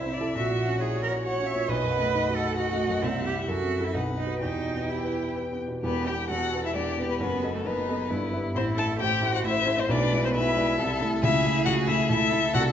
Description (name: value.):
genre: quick classical-period movement for piano quartet.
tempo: 134 BPM.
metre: 3/4.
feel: rubato.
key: E minor.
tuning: A4 = 440 Hz.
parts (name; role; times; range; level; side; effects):
rich violin; melody; 0.0-12.6 s; G4 to A5; -29 LUFS; left 6 dB; none.
rich cello; second line; 0.0-12.6 s; A3 to C#5; -30 LUFS; right 6 dB; none.
rich violin; second line; 0.0-12.7 s; D#4 to G5; -34 LUFS; left 3 dB; none.
warm grand piano; accompaniment; 0.0-12.7 s; E1 to E5; -28 LUFS; equal; none.
room: wet recital hall reverb, RT60 1.3 s.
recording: nothing above 7.7 kHz.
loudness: -24 LUFS.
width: side -9 dB against mid.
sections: 0.0-5.8 A section; 5.8-12.7 A section.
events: none.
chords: 0.4 F#7/A#; 1.7 B7; 3.0 C; 3.5 F#m7b5; 3.9 B; 4.4 Em; 7.2 B7/F#; 8.1 Em/G; 8.6 Am; 9.9 E7/B; 10.8 Am/C; 11.2 A/C#.